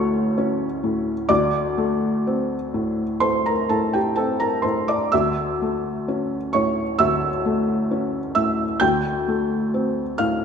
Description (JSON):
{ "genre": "neoclassical minimalist piano", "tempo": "62-68 BPM", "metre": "4/4", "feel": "rubato", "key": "unclear", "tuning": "A4 = 440 Hz", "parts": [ { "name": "felt-muted upright piano", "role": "solo", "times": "0.0-10.4 s", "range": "D2 to G6", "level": "-19 LUFS", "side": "equal", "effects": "none" } ], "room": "moderate concert hall reverb, RT60 2.3 s", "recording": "minimal, uncompressed stereo recording", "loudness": "-19 LUFS", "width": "side -7 dB against mid", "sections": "0.0-10.4 A section", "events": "none", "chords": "0.0 A/D; 1.3 D5; 5.1 A/D; 8.8 Dm7" }